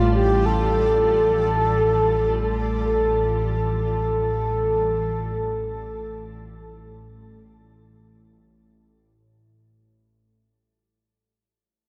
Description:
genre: dark ambient drone.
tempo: free time.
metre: none.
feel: none.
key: unclear.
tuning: A4 = 440 Hz.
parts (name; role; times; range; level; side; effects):
mellow horn-like synth lead; melody; 0.0-8.8 s; F4 to A4; -24 LUFS; equal; chorus, shimmer reverb, tape echo.
granular cloud pad; sustained chords; 0.0-10.0 s; G3 to A5; -36 LUFS; equal; built-in reverb, shimmer reverb.
analog drone; drone; 0.0-10.2 s; A1 to A2; -27 LUFS; equal; chorus.
room: wet huge ambient reverb, RT60 9.2 s.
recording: dark, warm production.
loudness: -22 LUFS.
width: mono.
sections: 0.0-10.0 A section.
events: fade-out on ambient pad 0.0-10.0; fade-out 0.0-10.0.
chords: 0.0 Fadd9/A.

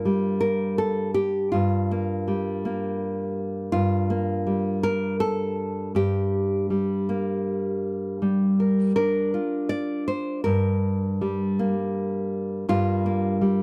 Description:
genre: folk, solo fingerstyle acoustic guitar.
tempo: 80 BPM.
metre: 3/4.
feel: rubato.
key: G minor.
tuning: A4 = 440 Hz.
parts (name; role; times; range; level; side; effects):
nylon-string guitar; solo; 0.0-13.6 s; G2 to D5; -25 LUFS; equal; none.
room: little or no reverb.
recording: dry, close 1970s-style studio recording.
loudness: -25 LUFS.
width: mono.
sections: 0.0-13.6 A section.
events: none.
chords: 0.0 Gm7.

